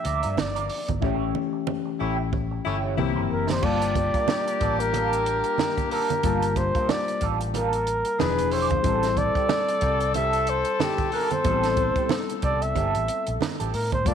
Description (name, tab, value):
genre	lush 1970s-style soul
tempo	92 BPM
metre	4/4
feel	swing 58% on 16ths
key	unclear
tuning	A4 = 440 Hz
part	breathy flugelhorn	melody	0.0-14.1 s	G4 to E5	-26 LUFS	right 1 dB	none
part	barky reed electric piano	accompaniment	0.0-14.1 s	E3 to A5	-30 LUFS	left 11 dB	overdrive
part	electric guitar through a small old amp	riff	0.0-14.1 s	Bb3 to D5	-32 LUFS	right 10 dB	wah
part	compact cocktail drum kit	drums	0.0-14.1 s	crash cymbal, hi-hat, kick drum, snare drum	-29 LUFS	right 2 dB	none
part	vintage muted fingered electric bass	bass	0.1-14.1 s	E1 to A2	-29 LUFS	equal	none
part	congas	percussion	0.4-14.1 s	none	-33 LUFS	right 10 dB	none
part	warm horn section	stabs	2.0-14.1 s	A3 to Bb4	-31 LUFS	left 9 dB	slapback echo
room	moderate echo chamber reverb, RT60 2.1 s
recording	1960s-style stereo with parts hard left and right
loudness	-22 LUFS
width	side -8 dB against mid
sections	0.0-3.6 A section; 3.6-14.1 B section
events	drum fill 1.0-3.6; band accent 1.0-3.6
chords	0.0 Gm7; 1.0 A7; 3.0 C7; 3.6 Gm9; 8.2 E7b9; 8.8 Am7